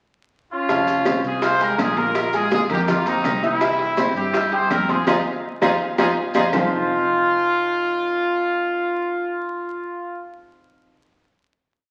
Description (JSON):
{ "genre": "latin, salsa", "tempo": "165 BPM", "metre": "4/4", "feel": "straight", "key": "F minor", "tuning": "A4 = 439 Hz", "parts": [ { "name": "brilliant horn section", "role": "melody", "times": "0.5-10.2 s", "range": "Bb3 to C5", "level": "-23 LUFS", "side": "equal", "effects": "none" }, { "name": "clear concert grand piano", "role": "accompaniment", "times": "0.7-10.9 s", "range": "E3 to F6", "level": "-27 LUFS", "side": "equal", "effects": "none" }, { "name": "vintage muted fingered electric bass", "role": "bass", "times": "0.7-10.9 s", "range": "F1 to G2", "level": "-35 LUFS", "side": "equal", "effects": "none" }, { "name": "bongos", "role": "percussion", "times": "0.7-6.6 s", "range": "none", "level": "-28 LUFS", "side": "equal", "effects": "none" }, { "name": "congas", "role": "percussion", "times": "0.7-6.6 s", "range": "none", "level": "-32 LUFS", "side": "equal", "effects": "none" }, { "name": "maracas", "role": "percussion", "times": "0.7-6.6 s", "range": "none", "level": "-44 LUFS", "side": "equal", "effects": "none" }, { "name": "timbales", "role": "percussion", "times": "0.9-6.6 s", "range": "none", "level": "-33 LUFS", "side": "equal", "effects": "none" }, { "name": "claves", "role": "percussion", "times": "1.1-6.6 s", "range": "none", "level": "-35 LUFS", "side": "equal", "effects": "none" } ], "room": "wet large studio reverb, RT60 1.3 s", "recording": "very old 78 rpm record, vinyl crackle", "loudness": "-20 LUFS", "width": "mono", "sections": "0.0-0.7 pickup bar; 0.7-6.5 A section; 6.5-9.4 final chord", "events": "band accent 5.1-6.5; drum fill 5.8-6.5", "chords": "0.0 N.C.; 0.7 Fm; 2.2 Bb7sus4; 3.6 C; 5.1 Fm7", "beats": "0.33 | 0.69 1.06 1.43 1.79 | 2.16 2.52 2.89 3.25 | 3.62 3.98 4.34 4.71 | 5.07 5.43 5.80 6.16 | 6.53 6.89 7.25 7.62 | 7.98 8.35 8.71 9.07" }